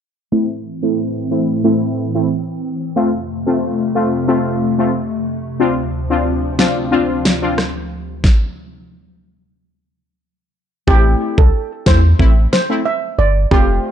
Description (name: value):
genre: dancehall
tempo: 91 BPM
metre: 4/4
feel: straight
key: A minor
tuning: A4 = 440 Hz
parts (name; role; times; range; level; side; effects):
- synth brass stab; accompaniment; 0.3-13.9 s; A3 to F4; -17 LUFS; left 2 dB; chorus, low-pass filter
- hollow soft pad; sustained chords; 0.7-8.2 s; D2 to C4; -22 LUFS; equal; ensemble chorus, sidechain pumping, low-pass filter
- pop drum kit; drums; 6.6-13.7 s; kick drum, rim click, snare drum; -14 LUFS; equal; none
- steel pan; melody; 10.9-13.8 s; G4 to E5; -19 LUFS; right 3 dB; none
- punchy sub bass; bass; 10.9-13.8 s; F1 to E2; -13 LUFS; equal; none
room: light reverb, digital ambience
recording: dark, warm production, nothing above 10.6 kHz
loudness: -14 LUFS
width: side -9 dB against mid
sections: 0.3-10.9 A section; 10.9-13.9 B section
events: filter sweep 0.3-10.9; stop 8.2-10.9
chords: 0.3 Am; 3.0 F; 5.6 Dm7; 8.2 N.C.; 10.9 Am